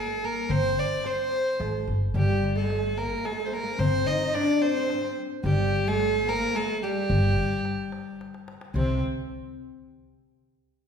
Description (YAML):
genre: Arabic maqam ensemble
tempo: 109 BPM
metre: 3/4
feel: straight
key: G maqam bayati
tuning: A4 = 440 Hz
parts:
  - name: rich violin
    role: melody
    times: 0.0-9.0 s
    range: C4 to Eb5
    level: -29 LUFS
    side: left 1 dB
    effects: none
  - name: oud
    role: second line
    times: 0.0-9.0 s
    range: C3 to Eb4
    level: -30 LUFS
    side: right 2 dB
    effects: none
  - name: darbuka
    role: percussion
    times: 0.2-9.0 s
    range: none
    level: -32 LUFS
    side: left 1 dB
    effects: none
  - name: upright bass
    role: bass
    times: 0.5-9.0 s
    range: G1 to C2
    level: -28 LUFS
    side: equal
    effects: none
  - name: warm cello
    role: second line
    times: 2.2-9.0 s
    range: C3 to Eb4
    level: -33 LUFS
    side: left 2 dB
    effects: none
room: wet recital hall reverb, RT60 1.6 s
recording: recorded in a church or concert hall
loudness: -23 LUFS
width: side -7 dB against mid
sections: 0.0-8.7 A section; 8.7-10.4 B section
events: drum fill 8.2-8.7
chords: none